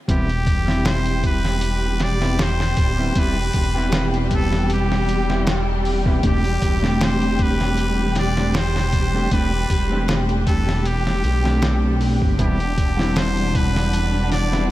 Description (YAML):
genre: trip hop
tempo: 78 BPM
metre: 4/4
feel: swing 54% on 16ths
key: unclear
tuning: A4 = 439 Hz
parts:
  - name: trumpet with straight mute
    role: melody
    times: 0.1-14.7 s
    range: G4 to D5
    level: -26 LUFS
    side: equal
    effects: dub echo
  - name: mellow electric guitar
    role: accompaniment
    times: 0.1-14.7 s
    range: G3 to G4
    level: -24 LUFS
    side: equal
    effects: harmonic tremolo, tape echo
  - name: warm symphonic string section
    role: sustained chords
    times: 0.1-14.7 s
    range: G3 to G4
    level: -27 LUFS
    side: left 1 dB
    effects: none
  - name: dark detuned saw bass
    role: bass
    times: 0.1-14.7 s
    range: D1 to B1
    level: -22 LUFS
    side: equal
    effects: none
  - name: trip hop sampler-style drum kit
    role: drums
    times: 0.1-14.7 s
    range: hi-hat, kick drum, snare drum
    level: -23 LUFS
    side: equal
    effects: high-pass filter on snare, studio reverb, high-pass filter on hats, high-pass filter on kick
  - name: flickering grainy texture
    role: texture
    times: 12.6-14.7 s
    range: F#5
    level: -33 LUFS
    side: right 2 dB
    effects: built-in reverb, wide subtle chorus
room: light reverb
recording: none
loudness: -17 LUFS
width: side -15 dB against mid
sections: 0.1-14.7 A section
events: none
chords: 0.1 Cmaj7; 6.2 D7sus4/E; 12.4 Cmaj7